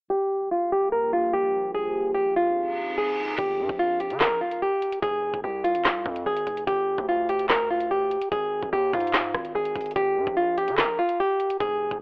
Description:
hip hop, drill; 146 BPM; 4/4; half-time; G phrygian; A4 = 440 Hz
flamenco guitar; melody; 0.1-12.0 s; F4 to Bb4; -23 LUFS; equal; low-pass filter
deep dark ambient pad; sustained chords; 0.8-3.4 s; F3 to Ab4; -32 LUFS; equal; chorus, built-in reverb, low-pass filter
reverse cymbal; sound effects; 2.7-3.4 s; -33 LUFS; right 1 dB
distorted 808-style bass; bass; 3.4-12.0 s; F1 to D3; -34 LUFS; equal; distortion
drill drum kit; drums; 3.4-12.0 s; crash cymbal, handclaps, hi-hat, kick drum, rim click, snare drum; -25 LUFS; equal
little or no reverb; dry, gritty hardware recording, transformer saturation, cassette tape, telephone sound; -22 LUFS; side -34 dB against mid
0.1-3.4 A section; 3.4-12.0 B section
filter sweep 0.1-3.4; reverse cymbal 2.7-3.4
0.1 Gm7; 1.7 Fm7; 3.4 Gm; 5.0 Fm; 6.7 G5; 8.3 Ab5; 10.0 Gm

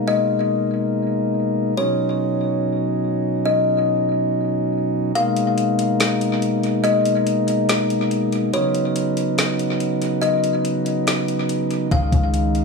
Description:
hip hop, atmospheric cloud-rap; 142 BPM; 4/4; half-time; A4 = 440 Hz
pipe organ, flutes; sustained chords; 0.0-12.6 s; Cb3 to Eb4; -20 LUFS; equal; sidechain pumping
kalimba; melody; 0.1-12.6 s; C#5 to F5; -23 LUFS; left 3 dB; tape echo
smooth R&B drum kit; drums; 5.2-12.6 s; hi-hat, kick drum, snare drum; -24 LUFS; left 1 dB; tape echo
warm 808-style bass; bass; 11.9-12.6 s; Db2; -19 LUFS; equal
light reverb; echo-heavy mix, studio ambience; -18 LUFS; side -4 dB against mid
0.0-5.2 A section; 5.2-12.6 B section
kick muted 5.2-11.9
0.0 Abmadd9; 1.8 Badd9; 5.2 Abmadd9; 8.5 Badd9; 11.9 Dbsus2

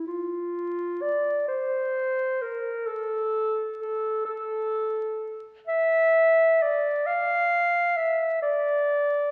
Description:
classical, free, expressive piece for unaccompanied clarinet; 43 BPM (dotted quarters); 6/8; rubato; A4 = 437 Hz
mellow clarinet; solo; 0.0-9.3 s; F4 to F5; -25 LUFS; equal
wet recital hall reverb, RT60 1.6 s; very old 78 rpm record, vinyl crackle; -25 LUFS; mono
0.0-9.3 A section

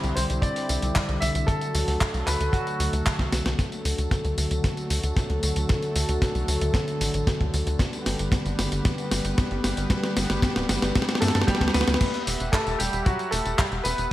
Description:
italo disco; 114 BPM; 4/4; straight; A4 = 440 Hz
clear baby grand piano; melody; 0.0-3.3, 11.2-14.1 s; F#3 to E5; -29 LUFS; equal; wide subtle chorus, digital delay
warm analog pad; sustained chords; 0.0-14.1 s; D3 to B5; -29 LUFS; equal; chorus
tight sequencer bass; bass; 0.0-14.1 s; D1 to G2; -27 LUFS; equal
clean 12-bit digital drum machine; drums; 0.0-14.1 s; crash cymbal, handclaps, hi-hat, snare drum, tambourine; -28 LUFS; equal; gated reverb
kick drum; drums; 0.4-13.7 s; -23 LUFS; equal
moderate lush hall reverb, RT60 1.9 s, small room ambience; bright 1980s-style digital production, vinyl crackle; -22 LUFS; side -15 dB against mid
0.0-3.6 A section; 3.6-12.0 B section; 12.0-14.1 C section
drum fill 3.2-3.6, 3.6-12.0
0.0 Cadd9; 1.5 D; 7.8 G; 12.0 Emadd9

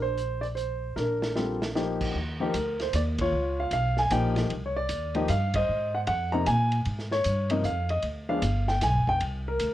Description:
jazz piano trio; 153 BPM; 3/4; swing 65% on 8ths; Eb major; A4 = 438 Hz
warm grand piano; melody; 0.0-9.7 s; C3 to Bb5; -27 LUFS; equal; plate reverb
upright bass; bass; 0.0-9.7 s; F1 to Bb2; -29 LUFS; equal
vintage drum kit; drums; 0.2-9.7 s; crash cymbal, hi-hat, kick drum, ride cymbal, snare drum; -36 LUFS; right 1 dB
light reverb; worn, warbling old tape, cassette tape, warbly pitch drift; -25 LUFS; side -13 dB against mid
0.0-2.1 A section; 2.1-9.7 B section
drum fill 1.0-1.8; band accent 3.1, 5.5
0.0 Bb69; 2.1 Ebmaj7sus2; 3.3 Db9; 4.5 Cm; 5.7 Ab69; 6.9 Dbadd9; 8.0 G7b9; 9.2 C7sus2

